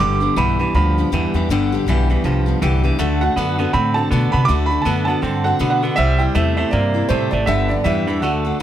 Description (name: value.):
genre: rock.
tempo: 160 BPM.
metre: 4/4.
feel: swing 59% on 8ths.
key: G major.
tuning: A4 = 440 Hz.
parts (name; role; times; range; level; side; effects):
dark upright piano; melody; 0.0-8.6 s; C5 to D6; -21 LUFS; right 4 dB; none.
picked steel-string acoustic guitar; accompaniment; 0.0-8.6 s; G2 to C5; -22 LUFS; left 8 dB; none.
twangy electric guitar; riff; 0.0-8.6 s; G2 to C4; -21 LUFS; right 4 dB; none.
upright bass; bass; 0.0-8.5 s; G1 to C3; -20 LUFS; equal; none.
room: small room ambience.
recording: none.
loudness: -15 LUFS.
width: side -11 dB against mid.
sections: 0.0-8.6 A section.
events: none.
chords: 0.0 G; 3.0 D; 6.0 C; 7.5 G.